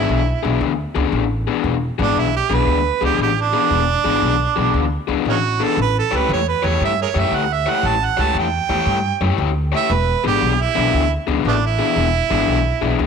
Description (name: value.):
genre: electric blues shuffle.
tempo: 116 BPM.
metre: 4/4.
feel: swing 67% on 8ths.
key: E mixolydian.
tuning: A4 = 440 Hz.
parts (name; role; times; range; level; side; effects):
clear harmonica; melody; 0.0-13.1 s; A3 to A5; -19 LUFS; right 10 dB; overdrive.
raw garage guitar; riff; 0.0-13.1 s; E3 to C#5; -21 LUFS; left 13 dB; overdrive.
upright bass; bass; 0.0-13.1 s; E1 to G2; -21 LUFS; equal; none.
room: moderate echo chamber reverb, RT60 1.7 s, small room reverb.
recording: 1960s-style stereo with parts hard left and right.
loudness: -16 LUFS.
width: side -6 dB against mid.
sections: 0.0-13.1 A section.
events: harmonica solo 0.0-13.1.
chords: 0.0 E7; 5.8 A7; 9.9 E7.